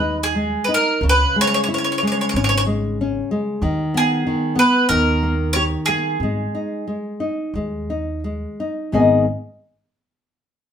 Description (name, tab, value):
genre	fado-style ballad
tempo	91 BPM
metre	4/4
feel	uneven beats, rubato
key	G# minor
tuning	A4 = 440 Hz
part	bowl-back mandolin	melody	0.0-8.2 s	G#4 to C#5	-19 LUFS	right 1 dB	none
part	nylon-string guitar	accompaniment	0.0-9.3 s	G#2 to G#5	-21 LUFS	left 1 dB	none
part	upright bass	bass	0.0-9.2 s	G#1 to D#2	-23 LUFS	equal	none
room	wet studio reverb, RT60 0.6 s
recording	band playing live in one room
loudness	-17 LUFS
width	side -8 dB against mid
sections	0.0-8.9 A section; 8.9-10.7 B section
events	none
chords	0.0 G#5; 1.0 C#5; 3.6 G#m/D#; 4.9 D#; 6.2 G#5; 8.9 G#m